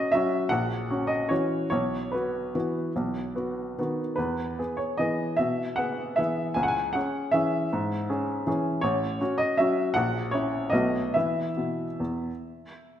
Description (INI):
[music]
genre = classical, piano waltz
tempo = 139-171 BPM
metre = 3/4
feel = rubato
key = E major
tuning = A4 = 440 Hz
[part]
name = clear upright piano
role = solo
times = 0.0-13.0 s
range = A1 to G#5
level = -25 LUFS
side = equal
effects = none
[sound]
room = wet scoring stage reverb, RT60 1.6 s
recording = none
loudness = -25 LUFS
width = side -10 dB against mid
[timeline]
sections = 0.0-13.0 A section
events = none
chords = 0.0 F#5; 0.5 F#7/A#; 1.7 Bsus4; 3.0 B; 4.2 E; 6.6 C#m; 8.8 F#m/A; 10.0 F#7/A#; 10.7 B7; 11.2 E5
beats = 0.13 | 0.51 0.90 1.30 | 1.71 2.13 2.54 | 2.95 3.35 3.78 | 4.19 4.59 5.00 | 5.40 5.79 6.19 | 6.58 6.96 7.35 | 7.72 8.09 8.47 | 8.84 9.20 9.59 | 9.96 10.33 10.73 | 11.15 11.57 11.99 | 12.41 12.83